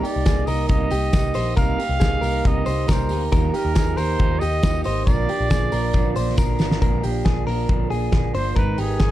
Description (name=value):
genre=jangly indie pop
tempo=137 BPM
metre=4/4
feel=straight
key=unclear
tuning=A4 = 441 Hz
part: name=breathy trumpet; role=melody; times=0.0-9.1 s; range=Ab4 to F5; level=-27 LUFS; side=right 2 dB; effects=none
part: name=electric guitar through a small old amp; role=accompaniment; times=0.0-9.1 s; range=Ab2 to Bb4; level=-27 LUFS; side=right 7 dB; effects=spring reverb
part: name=direct-recorded clean electric guitar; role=arpeggios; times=0.0-9.1 s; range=G4 to C5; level=-28 LUFS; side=left 4 dB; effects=none
part: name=loose indie drum kit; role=drums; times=0.0-9.1 s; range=hi-hat, kick drum, snare drum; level=-22 LUFS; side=equal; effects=none
part: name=vintage muted picked electric bass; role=bass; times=0.2-9.1 s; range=G1 to Eb2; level=-24 LUFS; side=equal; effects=none
part: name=tambourine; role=percussion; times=0.3-6.7 s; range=none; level=-43 LUFS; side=left 7 dB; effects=none
room=light reverb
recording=dark, warm production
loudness=-18 LUFS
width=side -14 dB against mid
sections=0.0-6.8 A section; 6.8-8.6 B section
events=drum fill 6.4-6.8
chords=0.0 Cm7; 3.3 Ebadd9; 5.1 Bb; 8.6 Abmadd9